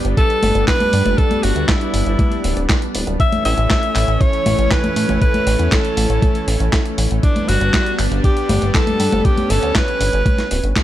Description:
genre	italo disco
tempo	119 BPM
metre	4/4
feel	straight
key	unclear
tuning	A4 = 439 Hz
part	lush unison pad	sustained chords	0.0-10.8 s	E3 to D4	-23 LUFS	equal	chorus
part	chorused synth bass	bass	0.0-10.7 s	D1 to A2	-18 LUFS	equal	none
part	dusty soul sampler-style drum kit	drums	0.0-10.8 s	congas, handclaps, hi-hat, snare drum	-21 LUFS	left 1 dB	small room ambience
part	bright alto saxophone	melody	0.2-10.8 s	D4 to E5	-20 LUFS	equal	digital delay
part	electronic kick drum	drums	0.2-10.8 s	none	-16 LUFS	equal	small room ambience
room	light reverb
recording	none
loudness	-14 LUFS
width	side -13 dB against mid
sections	0.0-10.8 A section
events	none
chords	0.0 G; 3.2 A; 7.2 G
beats	0.17 0.68 | 1.18 1.69 2.19 2.69 | 3.20 3.70 4.21 4.71 | 5.21 5.72 6.22 6.73 | 7.23 7.74 8.24 8.74 | 9.25 9.75 10.26 10.76

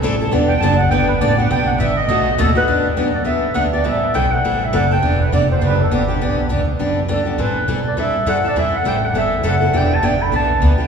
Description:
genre	acoustic string swing (jazz manouche)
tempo	204 BPM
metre	4/4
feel	swing 59% on 8ths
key	E minor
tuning	A4 = 439 Hz
part	picked steel-string acoustic guitar	accompaniment	0.0-10.9 s	B2 to A4	-19 LUFS	left 1 dB	none
part	upright bass	bass	0.0-10.8 s	E1 to B2	-19 LUFS	right 1 dB	none
part	accordion	second line	0.5-2.3, 5.2-6.5 s	G4 to A5	-23 LUFS	right 3 dB	light tremolo tuning
part	mellow clarinet	melody	2.4-10.9 s	A4 to B5	-20 LUFS	equal	none
room	wet cathedral reverb, RT60 6.2 s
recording	recorded in a church or concert hall, small room ambience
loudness	-14 LUFS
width	side -6 dB against mid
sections	0.0-2.7 A section; 2.7-10.9 B section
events	accordion solo 0.0-2.7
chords	0.3 Em9; 2.1 B7; 2.7 Em9; 3.8 Am9; 5.0 Em9; 7.4 Am7; 9.7 Em7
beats	0.03 | 0.33 0.62 0.91 1.21 | 1.50 1.79 2.09 2.38 | 2.67 2.97 3.26 3.56 | 3.85 4.14 4.44 4.73 | 5.03 5.32 5.61 5.91 | 6.20 6.49 6.79 7.08 | 7.38 7.67 7.96 8.26 | 8.55 8.84 9.14 9.43 | 9.73 10.02 10.31 10.61

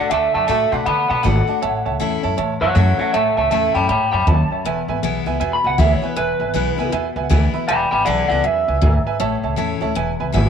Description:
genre	rock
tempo	158 BPM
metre	4/4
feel	swing 63% on 8ths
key	A major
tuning	A4 = 440 Hz
part	electric guitar through a small old amp	melody	0.0-9.5 s	B4 to B5	-18 LUFS	right 1 dB	tape echo
part	picked steel-string acoustic guitar	accompaniment	0.0-10.5 s	E2 to F#4	-24 LUFS	left 12 dB	none
part	warm upright piano	accompaniment	0.0-10.5 s	B4 to B5	-25 LUFS	right 10 dB	none
part	upright bass	bass	0.1-10.5 s	E1 to D3	-20 LUFS	equal	none
room	moderate spring reverb, RT60 1.9 s, small room ambience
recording	1960s-style stereo with parts hard left and right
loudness	-16 LUFS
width	side -7 dB against mid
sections	0.0-10.5 A section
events	upright piano fill 6.9-7.7, 10.0-10.5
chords	0.0 D; 1.6 A; 4.6 E; 9.2 A; 10.0 E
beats	| 0.11 0.49 0.86 1.24 | 1.62 2.00 2.38 2.76 | 3.13 3.51 3.89 4.27 | 4.65 5.03 5.41 5.79 | 6.16 6.54 6.92 7.30 | 7.68 8.06 8.44 8.82 | 9.20 9.57 9.95 10.33

